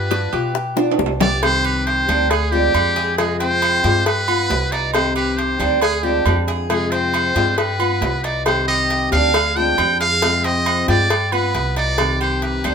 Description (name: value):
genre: latin, Cuban son and guajira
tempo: 136 BPM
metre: 4/4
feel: straight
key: C minor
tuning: A4 = 439 Hz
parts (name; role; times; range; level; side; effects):
- trumpet with metal mute; melody; 0.0-12.7 s; G4 to G5; -20 LUFS; equal; none
- fingerpicked steel-string acoustic guitar; accompaniment; 0.0-12.7 s; C3 to G4; -24 LUFS; left 6 dB; none
- Cuban tres; arpeggios; 0.0-12.7 s; G3 to Ab4; -24 LUFS; right 4 dB; none
- upright bass; bass; 0.0-12.7 s; C2 to B2; -23 LUFS; equal; none
- bongos and cowbell; percussion; 0.1-12.7 s; none; -23 LUFS; left 4 dB; none
- timbales and agogo bells; percussion; 0.1-12.7 s; none; -24 LUFS; right 9 dB; none
room: moderate studio reverb, RT60 0.6 s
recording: minimal, uncompressed stereo recording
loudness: -15 LUFS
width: side -6 dB against mid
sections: 0.0-1.4 A section; 1.4-12.7 B section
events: drum fill 0.8-1.4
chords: 0.0 G7; 1.4 Cm; 2.3 Dm7b5; 3.2 Fm; 4.1 G7; 4.9 Cm; 5.8 Dm7b5; 6.7 Fm; 7.6 G7; 8.5 Cm; 9.3 Dm7b5; 10.2 Fm; 11.1 G7; 12.0 Cm